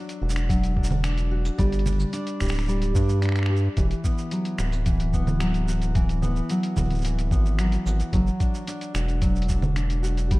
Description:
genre	folktronica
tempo	110 BPM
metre	4/4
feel	straight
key	unclear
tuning	A4 = 440 Hz
part	fingerpicked steel-string acoustic guitar	arpeggios	0.0-10.4 s	E3 to G4	-28 LUFS	equal	vintage 12-bit sampler grit, tape echo
part	lo-fi sampler-style drum kit	drums	0.1-10.4 s	congas, finger snaps, hi-hat, shaker	-32 LUFS	right 2 dB	small room reverb
part	round analog bass	bass	0.2-10.4 s	D1 to G2	-24 LUFS	equal	tube saturation
part	electronic kick drum	drums	0.5-10.4 s	none	-24 LUFS	equal	small room reverb
room	digital ambience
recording	dark, warm production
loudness	-21 LUFS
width	side -20 dB against mid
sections	0.0-10.4 A section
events	none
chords	0.0 D; 1.6 G5; 3.8 Eadd9; 8.1 D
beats	0.50 1.04 | 1.59 2.13 2.68 3.22 | 3.77 4.31 4.86 5.41 | 5.95 6.50 7.04 7.59 | 8.13 8.68 9.22 9.77 | 10.31

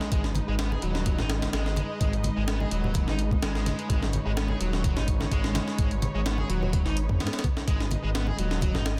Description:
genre	breakbeat, breaks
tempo	127 BPM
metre	4/4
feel	swing 53% on 16ths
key	G# minor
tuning	A4 = 440 Hz
part	muted studio string section	sustained chords	0.0-9.0 s	G#3 to D#5	-37 LUFS	equal	sidechain pumping
part	fuzz guitar	riff	0.0-8.9 s	F#3 to G#4	-37 LUFS	equal	distortion, digital delay
part	breakbeat sampler-style drum kit	drums	0.0-9.0 s	hi-hat, kick drum, snare drum	-31 LUFS	equal	small room ambience
part	detuned saw bass	bass	0.1-9.0 s	D#1 to G#2	-31 LUFS	equal	none
part	congas	percussion	0.3-9.0 s	none	-37 LUFS	equal	none
room	digital ambience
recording	dense, heavily limited modern master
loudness	-27 LUFS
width	mono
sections	0.0-9.0 A section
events	none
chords	0.0 G#m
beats	| 0.12 0.59 1.06 1.53 | 2.01 2.48 2.95 3.42 | 3.90 4.37 4.84 5.32 | 5.79 6.26 6.73 7.21 | 7.68 8.15 8.62

